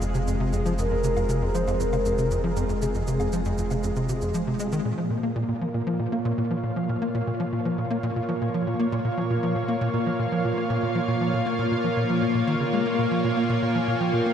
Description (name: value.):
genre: ambient, sequencer-driven space music.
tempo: 118 BPM.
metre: 4/4.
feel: straight.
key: F minor, Bb minor from 4.8 s.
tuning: A4 = 440 Hz.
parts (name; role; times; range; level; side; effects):
lush unison pad; sustained chords; 0.0-14.3 s; Bb2 to F5; -26 LUFS; equal; chorus, shimmer reverb.
tight sequencer bass; riff; 0.0-14.3 s; F2 to Bb3; -26 LUFS; equal; ensemble chorus, tape echo.
warm sub bass; bass; 0.0-4.8 s; F1; -30 LUFS; equal; none.
cabasa and woodblock; percussion; 0.0-4.8 s; none; -41 LUFS; equal; tape echo.
pulsing gated texture; texture; 0.0-4.9 s; Ab4; -43 LUFS; right 2 dB; none.
mellow horn-like synth lead; melody; 0.8-4.3, 13.7-14.3 s; Ab4 to Ab5; -30 LUFS; left 1 dB; wide subtle chorus, shimmer reverb, tape echo.
room: moderate lush hall reverb, RT60 2.7 s.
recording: dreamy mix soaked in reverb.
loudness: -23 LUFS.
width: side -8 dB against mid.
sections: 0.0-4.8 A section; 4.8-14.3 B section.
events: none.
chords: 0.0 Fm; 4.8 Bbm.